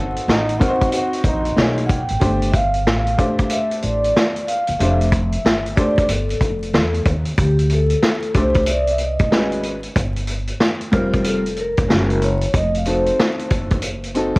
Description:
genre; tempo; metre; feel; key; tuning
hip hop, jazz-hop; 93 BPM; 4/4; swing 64% on 16ths; unclear; A4 = 439 Hz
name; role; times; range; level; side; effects
vibraphone with soft mallets; melody; 0.0-13.5 s; G4 to G5; -22 LUFS; equal; cassette tape
clear upright piano; accompaniment; 0.0-14.4 s; G3 to C#5; -22 LUFS; left 1 dB; cassette tape
upright bass; bass; 0.0-14.4 s; E1 to E2; -21 LUFS; equal; none
vintage drum kit; drums; 0.2-14.4 s; hi-hat, kick drum, snare drum; -19 LUFS; equal; vintage 12-bit sampler grit, cassette tape
clear trombone; second line; 0.3-1.7 s; Eb4 to Gb4; -23 LUFS; right 1 dB; cassette tape
room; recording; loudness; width
light reverb; home recording on cassette, vinyl crackle; -16 LUFS; side -25 dB against mid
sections
0.0-7.4 A section; 7.4-14.4 B section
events
vibraphone solo 7.4-14.4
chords
0.0 F7b9 (rootless); 1.6 Bmaj9; 2.2 F69; 4.8 F6; 7.4 D7sus4; 9.3 Abm7; 10.0 Gm7; 11.9 F#add9; 12.5 F7b9

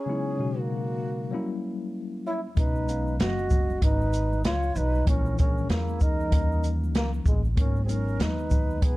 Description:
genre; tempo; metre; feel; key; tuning
hip hop, jazz-hop; 96 BPM; 4/4; swing 60% on 16ths; unclear; A4 = 440 Hz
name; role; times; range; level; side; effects
trombone with bucket mute; melody; 0.0-9.0 s; Ab3 to F#4; -31 LUFS; equal; none
breathy mellow jazz flute; second line; 0.0-9.0 s; Fb4 to D#5; -38 LUFS; right 5 dB; none
mellow tine electric piano; accompaniment; 0.1-9.0 s; Cb3 to F5; -32 LUFS; left 3 dB; medium stereo tremolo
upright bass; bass; 2.6-9.0 s; F#1 to Fb2; -28 LUFS; equal; none
open jazz drum kit; drums; 2.6-9.0 s; hi-hat, kick drum, shaker, snare drum; -25 LUFS; equal; none
tube shaker and congas; percussion; 2.6-9.0 s; none; -42 LUFS; right 3 dB; none
room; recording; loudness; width
little or no reverb; dark, warm production; -23 LUFS; side -19 dB against mid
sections
0.0-9.0 A section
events
none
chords
0.1 Dbm11; 1.3 Gb7b9; 2.6 B69; 5.1 Bbm7b5; 6.3 Eb7b9; 7.6 Abm9

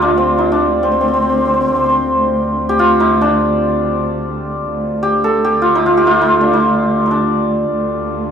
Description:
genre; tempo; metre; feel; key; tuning
Persian modal ensemble; free time; none; none; D dastgah shur; A4 = 442 Hz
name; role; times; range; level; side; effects
santur; melody; 0.0-8.3 s; C4 to A4; -13 LUFS; equal; none
rich chamber cello section; drone; 0.0-8.3 s; D2; -20 LUFS; right 1 dB; none
room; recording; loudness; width
moderate booth ambience, RT60 0.2 s; dry, close 1970s-style studio recording; -12 LUFS; side -7 dB against mid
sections
0.0-4.7 A section; 4.7-8.3 A section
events
none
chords
none

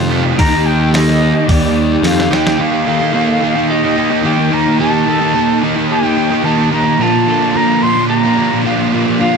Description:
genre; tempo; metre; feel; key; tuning
rock, shoegaze and dream pop; 109 BPM; 4/4; straight; unclear; A4 = 441 Hz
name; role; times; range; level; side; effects
silver concert flute; melody; 0.0-9.4 s; D5 to C6; -18 LUFS; right 1 dB; slapback echo
string machine, cellos; sustained chords; 0.0-9.4 s; Bb3 to Eb6; -21 LUFS; right 2 dB; ensemble chorus
twelve-string electric guitar; arpeggios; 0.0-9.4 s; F4 to A4; -24 LUFS; left 2 dB; lush chorus, slapback echo
crunchy overdriven guitar; riff; 0.0-9.4 s; F2 to G4; -16 LUFS; right 12 dB; reverse reverb
thick fuzz guitar; riff; 0.0-9.4 s; F2 to Eb4; -17 LUFS; left 9 dB; distortion, lush chorus
fuzz picked electric bass; bass; 0.0-2.6 s; Eb2 to F2; -16 LUFS; equal; overdrive
clean 12-bit digital drum machine; drums; 0.4-2.6 s; hi-hat, kick drum, snare drum; -17 LUFS; equal; none
room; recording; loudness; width
moderate lush hall reverb, RT60 2.1 s; none; -11 LUFS; side -5 dB against mid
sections
0.0-2.6 A section; 2.6-9.4 B section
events
drum fill 2.0-2.6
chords
0.4 Ebmaj7; 2.6 Eb; 7.0 Bbadd9

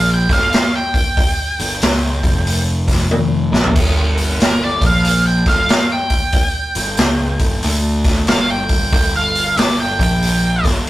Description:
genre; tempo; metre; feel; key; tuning
blues rock power trio and southern rock; 93 BPM; 4/4; swing 64% on 8ths; unclear; A4 = 440 Hz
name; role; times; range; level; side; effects
octave-fuzz lead guitar; melody; 0.0-10.6 s; Bb4 to G5; -19 LUFS; right 1 dB; wah, distortion
fuzz picked electric bass; bass; 0.0-10.9 s; F1 to D2; -18 LUFS; equal; overdrive
raw garage drum kit; drums; 0.3-10.9 s; crash cymbal, hi-hat, kick drum, snare drum, toms; -16 LUFS; equal; none
room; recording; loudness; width
light reverb; rough rehearsal-room recording, tube saturation; -13 LUFS; side -16 dB against mid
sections
0.0-10.9 A section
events
lead electric guitar solo 0.0-10.9; drum fill 3.1-3.8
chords
none

